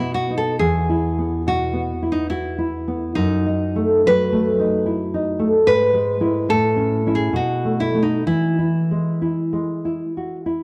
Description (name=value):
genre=romantic duo for nylon-string guitar and classical guitar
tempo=70 BPM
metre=3/4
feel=uneven beats, rubato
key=E major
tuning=A4 = 440 Hz
part: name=nylon-string guitar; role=melody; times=0.0-10.6 s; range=D#4 to B4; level=-24 LUFS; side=equal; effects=none
part: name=nylon-string guitar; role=accompaniment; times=0.0-10.6 s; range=E2 to F#4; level=-22 LUFS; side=equal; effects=none
room=moderate plate reverb, RT60 3.2 s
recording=dark, warm production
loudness=-20 LUFS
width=mono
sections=0.0-10.6 A section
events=none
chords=0.0 B; 0.6 E; 3.2 B7/F#; 5.7 E/G#; 6.5 A; 7.4 B7; 8.3 E